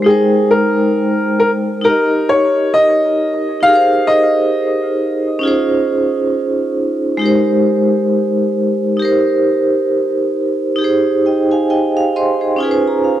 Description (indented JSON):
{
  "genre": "hip hop",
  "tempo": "67 BPM",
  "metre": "4/4",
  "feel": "swing 59% on 16ths",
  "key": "Ab major",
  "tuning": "A4 = 440 Hz",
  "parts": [
    { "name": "vibraphone with hard mallets", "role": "accompaniment", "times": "0.0-13.2 s", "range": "Ab3 to C6", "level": "-14 LUFS", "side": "right 1 dB", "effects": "cassette tape" },
    { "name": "bright upright piano", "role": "melody", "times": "0.1-5.8 s", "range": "Ab4 to F5", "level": "-14 LUFS", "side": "equal", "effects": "analog delay" }
  ],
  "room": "moderate plate reverb, RT60 3.0 s",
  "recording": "none",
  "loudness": "-12 LUFS",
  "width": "side -12 dB against mid",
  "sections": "0.1-13.2 A section",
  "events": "none",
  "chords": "0.1 Abmaj9; 1.8 Eb7; 3.6 Fm9/Eb; 5.4 Dbmaj9; 7.2 Abmaj9; 9.0 Cm7; 10.8 Fm9/Eb; 12.6 Dbmaj9",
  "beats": "| 0.05 0.95 1.84 2.74 | 3.63 4.53 5.42 6.32 | 7.21 8.11 9.01 9.90 | 10.80 11.69 12.59"
}